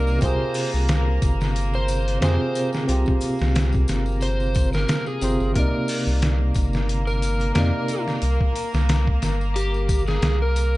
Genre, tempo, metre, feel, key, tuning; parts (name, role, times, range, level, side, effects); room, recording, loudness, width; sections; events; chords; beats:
trip hop; 90 BPM; 4/4; swing 56% on 16ths; C minor; A4 = 439 Hz
overdriven slide guitar; melody; 0.0-10.8 s; G4 to C5; -29 LUFS; right 1 dB; tape echo
bright tine electric piano; accompaniment; 0.0-8.2 s; C3 to D5; -26 LUFS; equal; harmonic tremolo, vintage 12-bit sampler grit
rich chamber violin section; sustained chords; 0.0-10.8 s; Bb3 to Bb4; -31 LUFS; equal; vintage 12-bit sampler grit
warm sub bass; bass; 0.0-10.8 s; G1 to F2; -22 LUFS; equal
tambourine and triangle; percussion; 0.1-10.8 s; -41 LUFS; left 4 dB
trip hop sampler-style drum kit; drums; 0.2-10.7 s; hi-hat, kick drum, snare drum; -24 LUFS; equal
digital ambience; dark, warm production, nothing above 10.3 kHz; -19 LUFS; side -18 dB against mid
0.0-10.8 A section
0.2 Fm; 5.5 Cm9
| 0.22 0.88 1.55 2.22 | 2.88 3.55 4.22 4.88 | 5.55 6.22 6.88 7.55 | 8.22 8.88 9.55 10.22